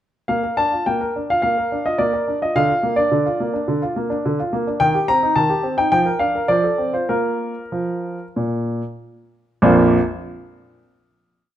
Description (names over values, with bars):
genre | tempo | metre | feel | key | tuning
classical-period piano sonatina | 93-108 BPM | 4/4 | rubato | Bb major | A4 = 440 Hz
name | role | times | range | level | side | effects
warm baby grand piano | solo | 0.3-10.0 s | Bb1 to Bb5 | -17 LUFS | equal | none
room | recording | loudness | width
moderate recital hall reverb, RT60 1.4 s | close, detailed microphones | -17 LUFS | side -11 dB against mid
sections
0.3-9.6 A section; 9.6-11.6 final chord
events
slowing down 3.7-9.6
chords
0.3 Bb; 2.6 Bb/D; 4.8 Cm/Eb; 5.9 Bb/F; 6.5 F; 7.1 Bb5; 9.6 Bb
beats
| 0.28 0.86 1.43 2.00 | 2.56 3.12 3.68 4.24 | 4.80 5.36 5.92 6.50 | 7.10 7.73 8.37 9.00 | 9.63